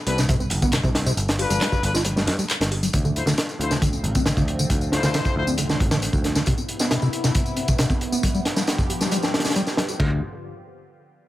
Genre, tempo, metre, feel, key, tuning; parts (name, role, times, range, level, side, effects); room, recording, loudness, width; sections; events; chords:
breakbeat, breaks; 136 BPM; 4/4; straight; D dorian; A4 = 438 Hz
deep acid bass; riff; 0.1-10.2 s; C3 to G4; -25 LUFS; equal; lush chorus, tape echo
mellow brass ensemble; stabs; 0.1-5.4 s; D4 to C5; -28 LUFS; left 4 dB; vintage 12-bit sampler grit, tape echo
picked electric bass; bass; 0.1-6.4, 10.0-10.2 s; G1 to G2; -26 LUFS; equal
crunchy breakbeat drum kit; drums; 0.1-10.1 s; hi-hat, kick drum, ride cymbal, snare drum; -23 LUFS; equal
garage drum kit; drums; 0.1-10.0 s; handclaps, hi-hat, tambourine; -30 LUFS; left 1 dB
phased analog pad; sustained chords; 2.9-10.2 s; C3 to G4; -31 LUFS; equal; phaser, chorus, sidechain pumping
light reverb; -19 LUFS; side -15 dB against mid
0.0-2.9 A section; 2.9-10.0 B section; 10.0-11.3 C section
drop 0.0-2.9; filter sweep on acid bass 2.9-10.0
0.0 Cmaj7(no3); 1.2 G7; 2.9 Dm7; 6.5 Cmaj7; 8.2 G7; 10.0 Dm7